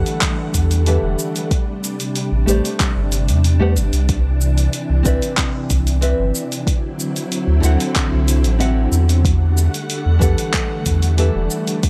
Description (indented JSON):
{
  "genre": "sunset chillout",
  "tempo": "93 BPM",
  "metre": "4/4",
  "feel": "straight",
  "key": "unclear",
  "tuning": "A4 = 440 Hz",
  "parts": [
    { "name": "nylon-string guitar", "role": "accompaniment", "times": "0.0-11.8 s", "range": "D3 to F#5", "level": "-26 LUFS", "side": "equal", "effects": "low-pass filter, tape echo" },
    { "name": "soft string machine", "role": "sustained chords", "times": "0.0-11.9 s", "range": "C3 to F#5", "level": "-26 LUFS", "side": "equal", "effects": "ensemble chorus" },
    { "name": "warm sub bass", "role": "bass", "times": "0.0-11.5 s", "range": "E1 to E2", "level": "-18 LUFS", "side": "equal", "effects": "none" },
    { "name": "deep house drum kit", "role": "drums", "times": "0.1-11.9 s", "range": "cabasa, handclaps, hi-hat", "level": "-26 LUFS", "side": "equal", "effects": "none" },
    { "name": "electronic kick drum", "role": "drums", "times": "0.2-11.9 s", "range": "none", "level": "-22 LUFS", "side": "equal", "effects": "none" }
  ],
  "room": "little or no reverb",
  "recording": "none",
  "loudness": "-18 LUFS",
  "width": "mono",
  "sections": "0.0-11.9 A section",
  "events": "none",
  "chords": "0.0 Em11; 1.5 Am11; 4.1 Cmaj9; 6.7 D9; 9.3 Em11",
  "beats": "0.22 0.87 | 1.51 2.16 2.80 3.45 | 4.09 4.74 5.38 6.03 | 6.67 7.32 7.96 8.61 | 9.25 9.90 10.54 11.19 | 11.84"
}